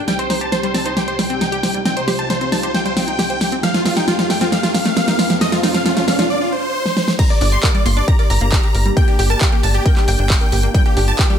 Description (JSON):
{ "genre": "uplifting trance", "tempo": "135 BPM", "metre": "4/4", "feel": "straight", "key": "G minor", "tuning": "A4 = 440 Hz", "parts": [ { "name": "dark studio string section", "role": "sustained chords", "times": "0.0-11.4 s", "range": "C2 to A4", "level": "-27 LUFS", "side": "left 1 dB", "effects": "stereo widening, sidechain pumping" }, { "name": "big supersaw lead", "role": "melody", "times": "0.1-11.4 s", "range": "F4 to C6", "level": "-21 LUFS", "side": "equal", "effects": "sidechain pumping, low-pass filter" }, { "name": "analog pluck", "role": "arpeggios", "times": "0.1-11.3 s", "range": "F3 to C5", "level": "-25 LUFS", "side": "right 1 dB", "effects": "chorus, sidechain pumping, dub echo" }, { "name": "big-room dance drum kit", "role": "drums", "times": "0.1-11.4 s", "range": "crash cymbal, handclaps, hi-hat, snare drum", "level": "-19 LUFS", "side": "equal", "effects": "none" }, { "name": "riser", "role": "sound effects", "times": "3.6-6.3 s", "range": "none", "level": "-26 LUFS", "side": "right 1 dB", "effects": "none" }, { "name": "analog pluck", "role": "second line", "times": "7.2-11.4 s", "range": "G4 to C6", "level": "-25 LUFS", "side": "left 1 dB", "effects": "analog chorus, sidechain pumping" }, { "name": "electronic kick drum", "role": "drums", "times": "7.2-11.3 s", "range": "none", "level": "-15 LUFS", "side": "equal", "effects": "none" }, { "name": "tight sequencer bass", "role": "bass", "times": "7.4-11.1 s", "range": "G1", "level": "-17 LUFS", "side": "equal", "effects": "sidechain pumping" } ], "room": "moderate digital room reverb, RT60 1.3 s", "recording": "none", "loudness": "-14 LUFS", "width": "side -8 dB against mid", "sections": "0.0-7.2 A section; 7.2-11.4 B section", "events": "build-up 0.0-7.2; drum fill 0.0-6.3, 6.9-7.2; riser 3.6-6.3; break 6.3-7.2; drop 7.2-11.4", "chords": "0.1 Cm; 3.6 F7; 7.2 Gm" }